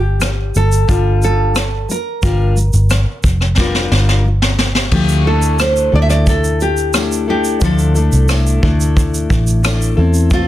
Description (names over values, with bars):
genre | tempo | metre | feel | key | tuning
acoustic pop | 89 BPM | 4/4 | straight | D minor | A4 = 444 Hz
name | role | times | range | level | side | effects
nylon-string guitar | melody | 0.0-10.5 s | F4 to E5 | -19 LUFS | right 1 dB | none
fingerpicked steel-string acoustic guitar | accompaniment | 0.0-10.5 s | D3 to Bb4 | -20 LUFS | left 4 dB | none
vintage muted fingered electric bass | bass | 0.0-10.5 s | F1 to E2 | -14 LUFS | equal | none
vintage brush drum kit | drums | 0.2-10.5 s | crash cymbal, kick drum, rim click, shaker, snare drum | -17 LUFS | equal | none
tambourine | percussion | 5.6-9.8 s | none | -30 LUFS | right 9 dB | none
room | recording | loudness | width
little or no reverb | dense, heavily limited modern master | -12 LUFS | side -13 dB against mid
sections
0.0-4.9 A section; 4.9-10.5 B section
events
drum fill 3.6-4.9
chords
0.0 Gm7; 4.9 Dmadd9; 10.0 Am/E